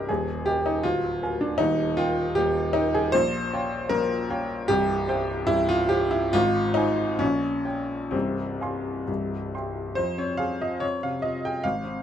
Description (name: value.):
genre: classical, romantic character piece for solo piano.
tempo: 61-81 BPM.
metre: 2/4.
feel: rubato.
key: F minor from 3.1 s.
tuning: A4 = 445 Hz.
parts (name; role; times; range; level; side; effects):
warm upright piano; solo; 0.0-12.0 s; C1 to C6; -23 LUFS; equal; none.
room: little or no reverb.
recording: close, detailed microphones.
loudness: -23 LUFS.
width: side -9 dB against mid.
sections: 0.0-10.0 A section; 10.0-12.0 B section.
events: none.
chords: 0.1 Eb; 0.8 Bb7/D; 1.6 Eb; 3.1 Gm7b5/Bb; 4.7 C; 6.3 Fm/Ab; 7.2 Gdim/Bb; 8.1 Fm/C; 9.1 C; 10.0 Fm.